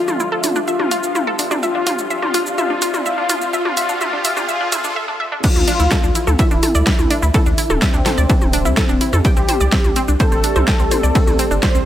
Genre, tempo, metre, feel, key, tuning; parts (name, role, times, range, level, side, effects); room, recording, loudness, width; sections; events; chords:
melodic techno; 126 BPM; 4/4; straight; D minor; A4 = 441 Hz
mellow synth brass; melody; 0.0-11.9 s; C4 to C5; -21 LUFS; left 2 dB; chorus, sidechain pumping, dub echo
deep dark ambient pad; sustained chords; 0.0-11.9 s; C4 to E5; -28 LUFS; equal; chorus, built-in reverb, sidechain pumping
riser; sound effects; 0.0-5.0 s; -29 LUFS; right 2 dB
round analog bass; bass; 0.1-11.8 s; D1 to F2; -18 LUFS; equal; sidechain pumping, high-pass filter
deep house drum kit; drums; 0.1-11.8 s; crash cymbal, hi-hat, ride cymbal, shaker, snare drum, toms; -22 LUFS; equal; overdrive, sidechain pumping on perc, sidechain pumping on hats, sidechain pumping on toms, sidechain pumping on cymbals
wide unison pluck; arpeggios; 0.2-11.8 s; C4 to G5; -22 LUFS; right 1 dB; sidechain pumping, dub echo
electronic kick drum; drums; 5.4-11.7 s; -16 LUFS; equal; overdrive
light reverb; high-pass filter; -14 LUFS; side -11 dB against mid
0.0-5.4 A section; 5.4-11.9 B section
build-up 0.0-5.4; riser 0.0-5.0; filter sweep 0.0-5.4; break 5.0-5.4; drop 5.4-11.9
0.0 Dmadd9; 1.6 Csus2; 5.4 Dmadd9; 9.2 Csus2